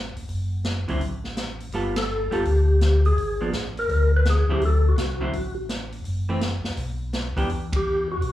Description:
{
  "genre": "soul jazz organ trio",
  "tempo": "167 BPM",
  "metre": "4/4",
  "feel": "swing 65% on 8ths",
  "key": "D mixolydian",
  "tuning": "A4 = 440 Hz",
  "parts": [
    { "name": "mellow tonewheel organ", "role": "bass", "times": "0.0-8.3 s", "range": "F#1 to E2", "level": "-23 LUFS", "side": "left 1 dB", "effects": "slow rotary speaker" },
    { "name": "swinging big-band drum kit", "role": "drums", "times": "0.2-8.3 s", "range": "hi-hat, kick drum, ride cymbal, snare drum", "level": "-31 LUFS", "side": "equal", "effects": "slapback echo" },
    { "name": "vintage hollow-body jazz guitar", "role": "accompaniment", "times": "0.9-7.5 s", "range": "D3 to A4", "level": "-29 LUFS", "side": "right 1 dB", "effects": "slapback echo" },
    { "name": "percussive tonewheel organ", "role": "melody", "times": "2.0-5.5, 7.8-8.3 s", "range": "F#4 to B4", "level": "-25 LUFS", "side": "equal", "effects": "fast rotary speaker, slapback echo" }
  ],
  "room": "light reverb",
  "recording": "live gig heard through the venue's PA, club reverb, small room ambience",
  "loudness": "-21 LUFS",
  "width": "side -14 dB against mid",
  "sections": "0.0-8.3 A section",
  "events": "band accent 1.9, 7.7",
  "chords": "0.0 D (rootless); 1.7 G9; 3.2 G#(b5, no3); 4.6 D7; 6.1 F#m7b5; 6.8 Bmadd11; 7.5 Em",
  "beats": "| 0.30 0.66 1.02 1.38 | 1.73 2.09 2.45 2.81 | 3.17 3.53 3.89 4.25 | 4.61 4.97 5.33 5.69 | 6.05 6.41 6.77 7.13 | 7.49 7.85 8.21"
}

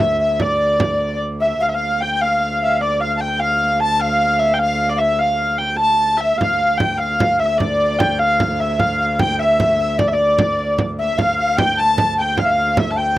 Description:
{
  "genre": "medieval dance",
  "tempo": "100 BPM (dotted quarters)",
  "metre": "6/8",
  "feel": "straight",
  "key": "D minor",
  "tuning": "A4 = 440 Hz",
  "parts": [
    { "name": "dark hurdy-gurdy", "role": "melody", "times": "0.0-13.2 s", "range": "D5 to A5", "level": "-17 LUFS", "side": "right 1 dB", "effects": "none" },
    { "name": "bright reedy tenor recorder", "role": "second line", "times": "0.0-13.2 s", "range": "D5 to A5", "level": "-21 LUFS", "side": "left 4 dB", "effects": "slapback echo" },
    { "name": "warm viola da gamba", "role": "drone", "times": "0.0-13.2 s", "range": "D2", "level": "-25 LUFS", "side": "right 1 dB", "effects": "none" },
    { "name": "frame drum", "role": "percussion", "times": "0.2-1.1, 6.4-13.0 s", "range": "none", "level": "-20 LUFS", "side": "right 2 dB", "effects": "none" }
  ],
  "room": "light reverb",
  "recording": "dry, close 1970s-style studio recording",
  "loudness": "-15 LUFS",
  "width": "side -15 dB against mid",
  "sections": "0.0-1.6 A section; 1.6-11.2 A section; 11.2-13.2 B section",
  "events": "none",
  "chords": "none",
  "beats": "| 0.40 1.00 | 1.60 2.20 | 2.80 3.40 | 4.00 4.60 | 5.20 5.80 | 6.40 7.00 | 7.60 8.20 | 8.79 9.39 | 9.99 10.58 | 11.18 11.78 | 12.37 12.97"
}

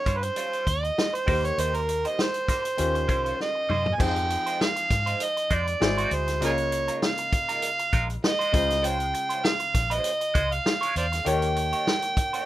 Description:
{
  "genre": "lush 1970s-style soul",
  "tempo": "99 BPM",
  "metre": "4/4",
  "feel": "swing 54% on 16ths",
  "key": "unclear",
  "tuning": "A4 = 436 Hz",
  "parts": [
    { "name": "overdriven harmonica", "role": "melody", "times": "0.0-12.5 s", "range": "Ab4 to Ab5", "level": "-26 LUFS", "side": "right 2 dB", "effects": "none" },
    { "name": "bright grand piano", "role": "accompaniment", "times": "0.0-12.5 s", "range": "Db3 to Eb5", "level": "-33 LUFS", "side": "left 5 dB", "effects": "none" },
    { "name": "electric guitar at the edge of break-up", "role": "riff", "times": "0.1-12.5 s", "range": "G3 to Db5", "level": "-33 LUFS", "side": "right 3 dB", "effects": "wah" },
    { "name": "vintage muted fingered electric bass", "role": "bass", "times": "0.1-11.7 s", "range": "Ab1 to Ab2", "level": "-30 LUFS", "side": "equal", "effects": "none" },
    { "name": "vintage drum kit", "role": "drums", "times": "0.1-12.5 s", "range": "crash cymbal, hi-hat, kick drum, snare drum, toms", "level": "-27 LUFS", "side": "equal", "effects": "none" }
  ],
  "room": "light reverb",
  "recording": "rough home demo mix",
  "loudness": "-23 LUFS",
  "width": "side -14 dB against mid",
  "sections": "0.0-4.0 A section; 4.0-12.5 B section",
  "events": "drum fill 3.4-4.0",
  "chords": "0.0 Eb13; 1.3 Cm7/Eb; 2.8 Eb13; 4.0 Fm7; 5.8 Ab7b13; 6.4 Db69; 8.5 Bbm9 (rootless); 11.3 Eb7",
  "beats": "0.37 0.97 | 1.58 2.18 2.79 3.39 | 4.00 4.61 5.21 5.82 | 6.42 7.03 7.63 8.24 | 8.84 9.45 10.05 10.66 | 11.26 11.87"
}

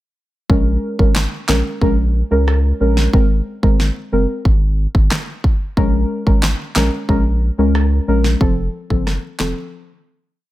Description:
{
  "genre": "dancehall",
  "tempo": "91 BPM",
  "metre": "4/4",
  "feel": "straight",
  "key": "Bb minor",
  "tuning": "A4 = 440 Hz",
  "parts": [
    { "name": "deep mellow chord stab", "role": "accompaniment", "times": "0.5-9.5 s", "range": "F3 to Bb4", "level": "-19 LUFS", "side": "left 1 dB", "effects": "chorus" },
    { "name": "saturated sub bass", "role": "bass", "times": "0.5-9.5 s", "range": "F1 to Db2", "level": "-17 LUFS", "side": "equal", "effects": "none" },
    { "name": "pop drum kit", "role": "drums", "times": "0.5-9.6 s", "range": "handclaps, kick drum, rim click, snare drum", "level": "-17 LUFS", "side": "equal", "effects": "none" }
  ],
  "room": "digital ambience",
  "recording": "none",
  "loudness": "-14 LUFS",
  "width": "side -16 dB against mid",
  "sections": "0.5-10.5 verse",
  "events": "fade-out 8.4-10.5; break 9.7-10.5",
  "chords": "0.5 Bbm7; 3.1 Abadd9; 5.8 Bbm7; 8.4 F",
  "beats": "| 0.50 1.16 1.81 2.48 | 3.13 3.79 4.45 5.11 | 5.77 6.43 7.09 7.75 | 8.41 9.07"
}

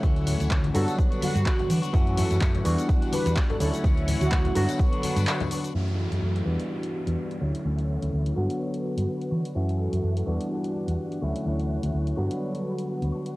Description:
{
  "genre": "filtered disco house",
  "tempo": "126 BPM",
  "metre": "4/4",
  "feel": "swing 56% on 16ths",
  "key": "unclear",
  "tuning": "A4 = 440 Hz",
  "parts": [
    { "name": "barky tine electric piano", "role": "accompaniment", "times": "0.0-13.3 s", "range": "D3 to F#4", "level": "-29 LUFS", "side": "equal", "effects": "overdrive, phaser, sidechain pumping, low-pass filter, cassette tape" },
    { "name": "string machine, full ensemble", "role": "sustained chords", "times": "0.0-13.4 s", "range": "G3 to F#5", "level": "-38 LUFS", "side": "equal", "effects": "ensemble chorus, sidechain pumping, low-pass filter, cassette tape" },
    { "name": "electric guitar at the edge of break-up", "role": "riff", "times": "0.0-13.4 s", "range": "E3 to F#4", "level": "-37 LUFS", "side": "left 7 dB", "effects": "phaser, sidechain pumping, low-pass filter, cassette tape" },
    { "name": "hollow-body short-scale fingered electric bass", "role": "bass", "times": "0.0-13.1 s", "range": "D2 to E3", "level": "-26 LUFS", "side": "equal", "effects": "sidechain pumping, low-pass filter" },
    { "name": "electronic kick drum", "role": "drums", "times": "0.0-4.9 s", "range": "none", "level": "-23 LUFS", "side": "equal", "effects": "studio reverb" },
    { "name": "house drum kit", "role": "drums", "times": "0.0-13.3 s", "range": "handclaps, hi-hat, shaker", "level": "-34 LUFS", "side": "equal", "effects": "sidechain pumping on hats, studio reverb, sidechain pumping on perc" },
    { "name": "tambourine and congas", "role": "percussion", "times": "0.0-5.7 s", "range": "none", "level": "-35 LUFS", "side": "left 4 dB", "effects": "sidechain pumping on perc, low-pass filter on perc" },
    { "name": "analog synth brass", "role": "melody", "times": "0.7-4.6 s", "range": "F#4 to B4", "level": "-32 LUFS", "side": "right 2 dB", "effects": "chorus, sidechain pumping, low-pass filter" },
    { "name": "downlifter", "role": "sound effects", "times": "5.7-9.6 s", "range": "none", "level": "-41 LUFS", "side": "equal", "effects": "none" }
  ],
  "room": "light reverb",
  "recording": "home recording on cassette",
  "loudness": "-23 LUFS",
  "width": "side -19 dB against mid",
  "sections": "0.0-5.7 A section; 5.7-13.4 B section",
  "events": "break 5.3-5.7; band accent 5.3; filter sweep 5.7-13.4",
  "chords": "0.0 Dmaj9; 0.7 Gmaj7; 1.9 F#m7; 2.7 Em9; 3.6 Dmaj9; 4.6 Gmaj7; 5.7 F#m7; 6.5 Em9; 7.4 Dmaj9; 8.4 Gmaj7; 9.6 F#m7; 10.3 Em9; 11.2 Dmaj9; 12.2 Gmaj7",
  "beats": "| 0.03 0.51 0.98 1.46 | 1.94 2.41 2.89 3.37 | 3.84 4.32 4.79 5.27 | 5.75 6.22 6.70 7.18 | 7.65 8.13 8.60 9.08 | 9.56 10.03 10.51 10.98 | 11.46 11.94 12.41 12.89"
}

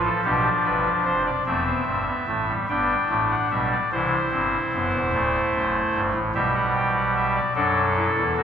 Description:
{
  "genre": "classical, baroque-style 4-part fugue for pipe organ",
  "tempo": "49 BPM (dotted quarters)",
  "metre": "6/8",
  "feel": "straight",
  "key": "G major",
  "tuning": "A4 = 440 Hz",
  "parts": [
    { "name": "pipe organ, soft reed", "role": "solo", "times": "0.0-8.4 s", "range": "D1 to G5", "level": "-20 LUFS", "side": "equal", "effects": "none" }
  ],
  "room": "wet church reverb, RT60 3.3 s",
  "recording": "small room ambience",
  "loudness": "-20 LUFS",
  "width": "side -8 dB against mid",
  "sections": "0.0-2.7 A section; 2.7-8.4 B section",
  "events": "none",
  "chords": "0.2 G7; 1.5 C/E; 2.7 G; 3.9 C; 5.1 D7; 6.4 G/B; 7.6 D/F#",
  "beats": "| 0.24 1.46 | 2.69 3.92 | 5.14 6.35 | 7.57"
}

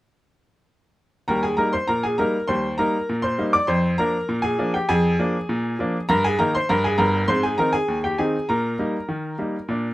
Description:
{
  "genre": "ragtime piano",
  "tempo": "100 BPM",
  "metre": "2/4",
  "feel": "straight",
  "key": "Eb major",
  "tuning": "A4 = 438 Hz",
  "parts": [
    { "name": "bright upright piano", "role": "solo", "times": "1.3-9.9 s", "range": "G1 to D6", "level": "-19 LUFS", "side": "equal", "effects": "none" }
  ],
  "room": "moderate booth ambience, RT60 0.2 s",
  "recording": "none",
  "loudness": "-19 LUFS",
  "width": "side -17 dB against mid",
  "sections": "1.3-9.9 A section",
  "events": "none",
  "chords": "1.3 Eb; 3.7 Bb7/F; 6.1 Eb/G; 7.3 Ab; 8.5 Eb/Bb",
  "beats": "| 1.29 1.89 | 2.49 3.09 | 3.69 4.29 | 4.89 5.49 | 6.09 6.68 | 7.28 7.88 | 8.48 9.09 | 9.69"
}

